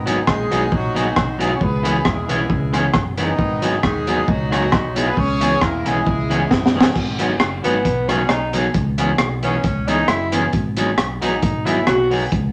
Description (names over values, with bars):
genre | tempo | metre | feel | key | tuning
ska | 134 BPM | 4/4 | swing 54% on 8ths | G# minor | A4 = 440 Hz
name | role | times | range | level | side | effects
clear horn section | melody | 0.0-6.8 s | D#3 to C#5 | -25 LUFS | equal | none
fingered electric bass | bass | 0.0-12.5 s | F#1 to E2 | -27 LUFS | equal | none
electric guitar at the edge of break-up | accompaniment | 0.1-12.2 s | E3 to G#4 | -24 LUFS | equal | tape echo
crunchy breakbeat drum kit | drums | 0.1-12.4 s | crash cymbal, hi-hat, kick drum, rim click, snare drum | -23 LUFS | equal | none
warm tenor saxophone | melody | 7.6-12.1 s | B3 to F#4 | -24 LUFS | equal | none
room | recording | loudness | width
wet studio reverb, RT60 0.8 s | none | -18 LUFS | mono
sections
0.0-7.0 A section; 7.0-12.5 B section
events
drum fill 6.5-7.0; tenor saxophone solo 7.0-12.5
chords
0.0 G#m7; 1.6 C#m7; 3.4 G#m7; 5.2 C#m7; 7.0 G#m7; 8.7 C#m7; 10.5 G#m7